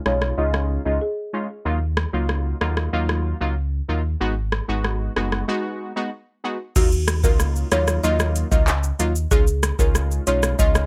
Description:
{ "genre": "dancehall", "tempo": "94 BPM", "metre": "4/4", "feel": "straight", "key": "Eb minor", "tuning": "A4 = 441 Hz", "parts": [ { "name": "synth brass stab", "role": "accompaniment", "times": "0.0-10.9 s", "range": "Gb3 to Gb4", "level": "-28 LUFS", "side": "equal", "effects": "chorus, sidechain pumping, low-pass filter" }, { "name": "folk marimba with medium mallets", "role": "melody", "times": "0.1-1.5, 6.8-10.7 s", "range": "Gb4 to Eb5", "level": "-28 LUFS", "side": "equal", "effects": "low-pass filter, digital delay" }, { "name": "sub bass with octave", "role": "bass", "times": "0.1-10.9 s", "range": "Gb1 to Eb2", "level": "-25 LUFS", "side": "equal", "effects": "none" }, { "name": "booming analog drum machine", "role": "drums", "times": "0.1-10.9 s", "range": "crash cymbal, handclaps, hi-hat, kick drum, rim click, shaker", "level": "-24 LUFS", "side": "equal", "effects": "overdrive" } ], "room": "little or no reverb", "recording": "none", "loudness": "-22 LUFS", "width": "mono", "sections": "0.0-6.8 A section; 6.8-10.9 B section", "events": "filter sweep 0.0-6.8; break 5.5-6.8", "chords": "0.0 Dbadd9; 1.7 Ebmadd9; 4.2 Abm7; 6.8 Ebmadd9; 9.3 Dbadd9", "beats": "0.38 1.02 | 1.65 2.29 2.93 3.57 | 4.21 4.84 5.48 6.12 | 6.76 7.40 8.04 8.68 | 9.31 9.95 10.59" }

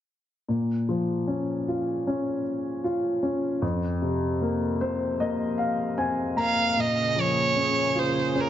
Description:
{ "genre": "pop ballad", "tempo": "76 BPM", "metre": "4/4", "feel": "straight", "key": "Bb minor", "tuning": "A4 = 439 Hz", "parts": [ { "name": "warm upright piano", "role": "accompaniment", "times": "0.5-8.5 s", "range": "F2 to Bb5", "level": "-25 LUFS", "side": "left 1 dB", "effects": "none" }, { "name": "warm violin", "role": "melody", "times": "6.4-8.5 s", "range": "Bb4 to F5", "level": "-23 LUFS", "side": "right 3 dB", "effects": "none" }, { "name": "lush unison pad", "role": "sustained chords", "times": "6.8-8.5 s", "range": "Db3 to Ab4", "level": "-30 LUFS", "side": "right 2 dB", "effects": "chorus" } ], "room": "wet recital hall reverb, RT60 1.7 s", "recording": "nothing above 7.5 kHz", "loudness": "-24 LUFS", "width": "side -11 dB against mid", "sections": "0.5-6.8 A section; 6.8-8.5 B section", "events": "upright piano fill 4.4-6.8", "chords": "0.5 Bbm; 3.6 Fsus4; 6.8 Bbm7", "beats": "| 0.49 1.29 2.07 2.85 | 3.62 4.41 5.19 5.98 | 6.77 7.56 8.35" }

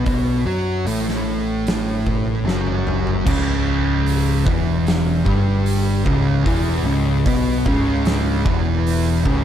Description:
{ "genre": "stoner and doom metal", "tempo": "75 BPM", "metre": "4/4", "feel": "straight", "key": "unclear", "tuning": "A4 = 441 Hz", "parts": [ { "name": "fuzz guitar", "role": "riff", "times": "0.0-9.4 s", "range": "C#2 to F#4", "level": "-22 LUFS", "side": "left 8 dB", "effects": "distortion" }, { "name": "thick fuzz guitar", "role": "riff", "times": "0.0-9.4 s", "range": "C#2 to F#4", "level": "-22 LUFS", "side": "right 8 dB", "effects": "distortion" }, { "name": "overdriven picked electric bass", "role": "bass", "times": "0.0-9.4 s", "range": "C#1 to F#2", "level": "-22 LUFS", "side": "equal", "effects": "none" }, { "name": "oversized low-tuned drum kit", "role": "drums", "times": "0.1-9.4 s", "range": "crash cymbal, hi-hat, kick drum, snare drum, toms", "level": "-24 LUFS", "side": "equal", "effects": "none" } ], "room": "small room reverb", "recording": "dark, warm production", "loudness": "-16 LUFS", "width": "side -10 dB against mid", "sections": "0.0-3.3 A section; 3.3-9.4 B section", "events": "drum fill 2.5-3.3", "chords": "0.0 F#madd11; 3.3 C#m", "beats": "| 0.06 0.86 1.66 2.46 | 3.26 4.06 4.86 5.65 | 6.45 7.25 8.05 8.85" }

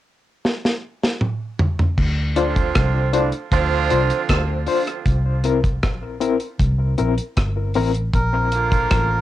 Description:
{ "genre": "dub reggae", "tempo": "78 BPM", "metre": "4/4", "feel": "straight", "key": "D minor", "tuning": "A4 = 440 Hz", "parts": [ { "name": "deep reggae drum kit", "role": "drums", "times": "0.5-9.1 s", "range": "crash cymbal, hi-hat, kick drum, rim click, snare drum, toms", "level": "-20 LUFS", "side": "equal", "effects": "cassette tape" }, { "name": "vintage muted fingered electric bass", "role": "bass", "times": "2.0-9.2 s", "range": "G1 to D2", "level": "-21 LUFS", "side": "equal", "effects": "tube saturation" }, { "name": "warm horn section", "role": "second line", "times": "2.4-9.2 s", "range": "A2 to F4", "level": "-23 LUFS", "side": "right 8 dB", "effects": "cassette tape, tape echo" }, { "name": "barky reed electric piano", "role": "stabs", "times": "2.4-7.9 s", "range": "C4 to C5", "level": "-23 LUFS", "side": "left 6 dB", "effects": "overdrive, fast tremolo, cassette tape, tape echo" }, { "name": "melodica", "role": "melody", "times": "8.1-9.2 s", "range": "Bb4", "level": "-21 LUFS", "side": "equal", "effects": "cassette tape, tape echo" } ], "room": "moderate small room reverb, RT60 0.5 s", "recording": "home recording on cassette", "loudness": "-18 LUFS", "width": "side -14 dB against mid", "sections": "0.0-2.0 A section; 2.0-9.2 B section", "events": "drum fill 0.4-2.0", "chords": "0.0 N.C.; 2.0 Dm7; 5.1 C7; 8.1 Bbmaj7", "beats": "0.44 1.21 | 1.98 2.75 3.52 4.29 | 5.06 5.83 6.60 7.37 | 8.14 8.91" }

